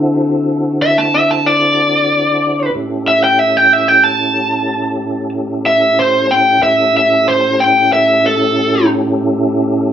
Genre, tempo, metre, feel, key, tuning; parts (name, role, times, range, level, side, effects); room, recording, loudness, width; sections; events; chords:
blues; 62 BPM (dotted quarters); 12/8; straight; A mixolydian; A4 = 438 Hz
mellow tonewheel organ; sustained chords; 0.0-9.9 s; A2 to A4; -16 LUFS; equal; slow rotary speaker, chorus vibrato
lead guitar through a small cranked amp; melody; 0.8-8.9 s; A4 to A5; -11 LUFS; equal; overdrive
wet stone room reverb, RT60 0.9 s; band playing live in one room; -10 LUFS; side -9 dB against mid
0.0-9.9 A section
lead electric guitar solo 0.0-9.9
0.0 D9; 2.7 A7